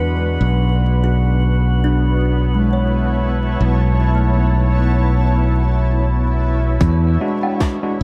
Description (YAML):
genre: ambient dub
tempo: 75 BPM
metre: 4/4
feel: swing 55% on 16ths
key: unclear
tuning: A4 = 438 Hz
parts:
  - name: granular cloud pad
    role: sustained chords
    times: 0.0-8.0 s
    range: G#3 to A5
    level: -26 LUFS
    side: equal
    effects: built-in reverb
  - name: modern bright fingered electric bass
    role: bass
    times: 0.0-8.0 s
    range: B1 to E2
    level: -17 LUFS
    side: equal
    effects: none
  - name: jazz brush drum kit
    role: drums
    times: 0.0-7.8 s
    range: hi-hat, snare drum, woodblock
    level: -29 LUFS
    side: equal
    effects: low-pass filter on hats, low-pass filter on snare, low-pass filter on perc, low-pass filter on room
  - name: drifting glass-harmonics texture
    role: texture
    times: 0.0-6.8 s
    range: F#4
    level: -33 LUFS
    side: equal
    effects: chorus, built-in reverb
  - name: kalimba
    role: arpeggios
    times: 1.0-7.0 s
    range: G#3 to C#5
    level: -28 LUFS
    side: equal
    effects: dub echo
  - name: electronic kick drum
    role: drums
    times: 6.8-7.8 s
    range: none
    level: -20 LUFS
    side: equal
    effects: none
  - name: tine electric piano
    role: stabs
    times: 7.2-8.0 s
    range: G#3 to F#4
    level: -22 LUFS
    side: equal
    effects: none
room: light reverb, small room ambience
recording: echo-heavy mix, vinyl crackle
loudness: -17 LUFS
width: mono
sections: 0.0-6.8 A section; 6.8-8.0 B section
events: none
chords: 0.4 Bm9